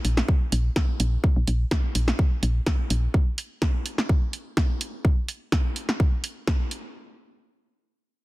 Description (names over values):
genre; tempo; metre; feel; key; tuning
minimal techno; 126 BPM; 4/4; swing 53% on 16ths; unclear; A4 = 443 Hz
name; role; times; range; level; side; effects
woody FM bass; bass; 0.0-3.1 s; Bb1; -22 LUFS; equal; sidechain pumping
punchy analog drum machine; drums; 0.0-6.8 s; hi-hat, snare drum; -28 LUFS; equal; none
electronic kick drum; drums; 0.3-6.6 s; none; -22 LUFS; equal; none
room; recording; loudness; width
little or no reverb; dense, heavily limited modern master; -22 LUFS; side -20 dB against mid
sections
0.0-7.0 A section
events
none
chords
none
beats
0.28 0.76 | 1.24 1.71 2.19 2.67 | 3.14 3.62 4.09 4.57 | 5.05 5.52 6.00 6.47